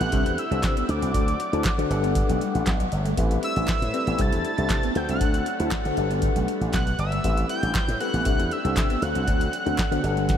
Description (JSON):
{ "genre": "early-eighties boogie funk", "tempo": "118 BPM", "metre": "4/4", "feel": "straight", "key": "G major", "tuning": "A4 = 440 Hz", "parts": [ { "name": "fat analog lead", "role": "melody", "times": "0.0-10.4 s", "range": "D6 to A6", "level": "-29 LUFS", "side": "right 1 dB", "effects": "chorus, diffuse ambient delay" }, { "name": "mellow tine electric piano", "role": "accompaniment", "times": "0.0-10.4 s", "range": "C4 to A5", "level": "-29 LUFS", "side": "left 4 dB", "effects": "medium stereo tremolo" }, { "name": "warm woodwind section", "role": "sustained chords", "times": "0.0-10.4 s", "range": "C3 to F#5", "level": "-35 LUFS", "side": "right 1 dB", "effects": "none" }, { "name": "electric guitar at the edge of break-up", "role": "riff", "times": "0.0-10.3 s", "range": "F#3 to E4", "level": "-33 LUFS", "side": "right 2 dB", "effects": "wide subtle chorus" }, { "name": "slap bass with an envelope filter", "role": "bass", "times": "0.0-10.3 s", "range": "G1 to D3", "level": "-26 LUFS", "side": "equal", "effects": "none" }, { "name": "booming analog drum machine", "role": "drums", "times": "0.0-10.4 s", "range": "handclaps, hi-hat, kick drum, snare drum", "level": "-27 LUFS", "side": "equal", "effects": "none" }, { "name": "group handclap", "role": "percussion", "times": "0.6-9.9 s", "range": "none", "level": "barely audible", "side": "none", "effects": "none" } ], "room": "light reverb", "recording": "none", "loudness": "-21 LUFS", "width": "side -9 dB against mid", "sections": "0.0-10.4 A section", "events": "tine electric piano fill 2.2-3.2", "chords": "0.1 C69; 0.9 D7; 1.9 Gmaj9; 3.2 Am9; 4.2 C69; 5.0 D7; 6.0 Gmaj9; 7.2 Am9; 8.3 C69; 9.0 D7" }